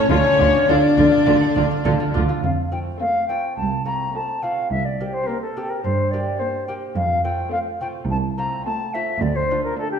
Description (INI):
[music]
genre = classical, baroque-style concerto movement with solo episodes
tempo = 106 BPM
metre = 4/4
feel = straight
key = F major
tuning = A4 = 440 Hz
[part]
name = rich symphonic violin section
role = melody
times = 0.0-10.0 s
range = F4 to D5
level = -31 LUFS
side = left 5 dB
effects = none
[part]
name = silver concert flute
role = melody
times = 0.0-10.0 s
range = G4 to Bb5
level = -22 LUFS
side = left 1 dB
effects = none
[part]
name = rich studio violin section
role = second line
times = 0.0-10.0 s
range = C4 to D4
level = -22 LUFS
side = left 3 dB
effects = none
[part]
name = lute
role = accompaniment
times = 0.0-10.0 s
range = D2 to D5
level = -27 LUFS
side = right 1 dB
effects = none
[part]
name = rich chamber viola section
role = accompaniment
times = 0.1-10.0 s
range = A3 to F4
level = -29 LUFS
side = equal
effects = none
[part]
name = rich chamber cello section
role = bass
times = 0.1-9.7 s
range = C2 to D3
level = -24 LUFS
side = right 3 dB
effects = none
[part]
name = rich chamber double bass section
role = bass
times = 0.1-2.2 s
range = D2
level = -23 LUFS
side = right 2 dB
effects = none
[sound]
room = wet recital hall reverb, RT60 1.2 s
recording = dark, warm production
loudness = -18 LUFS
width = side -7 dB against mid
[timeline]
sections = 0.0-2.4 A section; 2.4-10.0 B section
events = none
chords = 0.1 Dm; 2.4 F; 4.7 C5; 7.0 F; 9.2 Dm